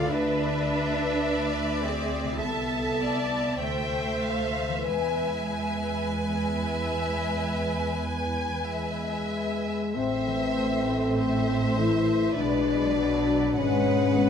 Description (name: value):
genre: classical, slow romantic movement for symphony orchestra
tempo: 46-52 BPM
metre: 4/4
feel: rubato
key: A minor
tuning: A4 = 441 Hz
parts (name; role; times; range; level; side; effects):
- rich chamber violin section; melody; 0.0-14.3 s; D5 to A5; -33 LUFS; left 2 dB; none
- clear studio violin section; second line; 0.0-14.3 s; B4 to G#5; -34 LUFS; equal; none
- rich studio viola section; accompaniment; 0.0-14.3 s; F#3 to D5; -32 LUFS; right 2 dB; none
- concert harp; arpeggios; 0.0-14.3 s; A2 to C5; -33 LUFS; left 9 dB; none
- rich chamber cello section; bass; 0.0-14.3 s; G#2 to D4; -32 LUFS; right 2 dB; none
- warm symphonic double bass section; bass; 0.0-14.3 s; G#1 to E2; -32 LUFS; right 3 dB; none
- dark French horn section; sustained chords; 8.7-14.3 s; G#3 to E4; -25 LUFS; left 3 dB; none
room: moderate scoring stage reverb, RT60 1.7 s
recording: none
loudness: -24 LUFS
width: side -7 dB against mid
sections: 0.0-10.0 A section; 10.0-14.3 A section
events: none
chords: 0.1 E7/D; 2.4 Am/C; 4.9 E; 10.0 Am; 12.4 G#dim/B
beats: | 0.08 1.26 2.42 3.61 | 4.87 6.16 7.45 8.71 | 9.96 11.19 12.39 13.58